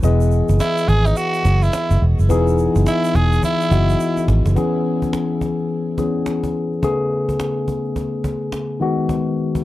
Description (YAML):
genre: R&B, new jack swing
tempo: 106 BPM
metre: 4/4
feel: swing 61% on 16ths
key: E major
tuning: A4 = 445 Hz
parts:
  - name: tine electric piano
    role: accompaniment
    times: 0.0-9.6 s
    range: C#3 to D#5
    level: -20 LUFS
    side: left 2 dB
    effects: phaser
  - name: vintage muted fingered electric bass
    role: bass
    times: 0.0-4.5 s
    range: E1 to G#1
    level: -15 LUFS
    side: equal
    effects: none
  - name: cajon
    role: drums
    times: 0.0-9.6 s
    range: none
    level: -26 LUFS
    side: right 1 dB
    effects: none
  - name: tube shaker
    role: percussion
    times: 0.0-4.6 s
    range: none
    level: -41 LUFS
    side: right 14 dB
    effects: none
  - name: breathy tenor saxophone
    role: melody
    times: 0.6-4.2 s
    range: D#4 to G#4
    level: -23 LUFS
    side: right 3 dB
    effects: tape echo
room: little or no reverb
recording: dry, close 1970s-style studio recording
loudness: -16 LUFS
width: side -15 dB against mid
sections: 0.0-4.6 A section; 4.6-9.6 B section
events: drum fill 4.0-4.6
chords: 0.0 Emaj7; 4.6 E6; 6.8 Amaj9; 8.8 G#m7